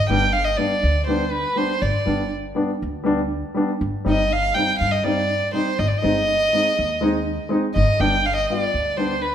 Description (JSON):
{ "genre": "klezmer", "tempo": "122 BPM", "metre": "4/4", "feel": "straight", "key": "G phrygian dominant", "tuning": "A4 = 440 Hz", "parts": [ { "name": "dark violin", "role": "melody", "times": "0.0-9.3 s", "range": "B4 to G5", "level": "-21 LUFS", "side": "right 1 dB", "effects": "none" }, { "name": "dark upright piano", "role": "accompaniment", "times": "0.1-9.1 s", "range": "G3 to F4", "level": "-23 LUFS", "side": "left 1 dB", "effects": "none" }, { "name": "upright bass", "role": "bass", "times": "0.1-9.3 s", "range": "G1 to G2", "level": "-24 LUFS", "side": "equal", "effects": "none" } ], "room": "moderate recital hall reverb, RT60 1.7 s", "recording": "minimal, uncompressed stereo recording", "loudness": "-18 LUFS", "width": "side -9 dB against mid", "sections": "0.0-9.3 A section", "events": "none", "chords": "0.0 G; 3.8 Cm/G; 5.8 Ab/G; 7.8 G" }